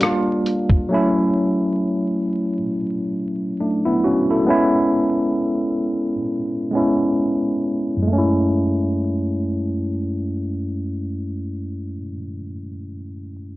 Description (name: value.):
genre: lo-fi hip hop.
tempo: 67 BPM.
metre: 4/4.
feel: swing 57% on 16ths.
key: F# minor.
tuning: A4 = 445 Hz.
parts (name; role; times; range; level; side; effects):
tine electric piano; accompaniment; 0.0-13.6 s; F#2 to A4; -19 LUFS; equal; medium stereo tremolo, cassette tape.
dusty soul sampler-style drum kit; drums; 0.0-0.9 s; hi-hat, kick drum, rim click; -18 LUFS; equal; none.
room: wet studio reverb, RT60 0.6 s.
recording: vinyl crackle, low-pass filter.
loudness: -18 LUFS.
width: side -18 dB against mid.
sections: 0.0-8.1 A section; 8.1-11.6 B section.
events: filter sweep 0.0-8.1.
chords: 0.0 Gm7; 0.9 F#m7; 4.5 C#m7; 8.1 F#m9.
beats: 0.01 | 0.90 1.80 2.69 3.59 | 4.48 5.38 6.27 7.17 | 8.06 8.96 9.86 10.75.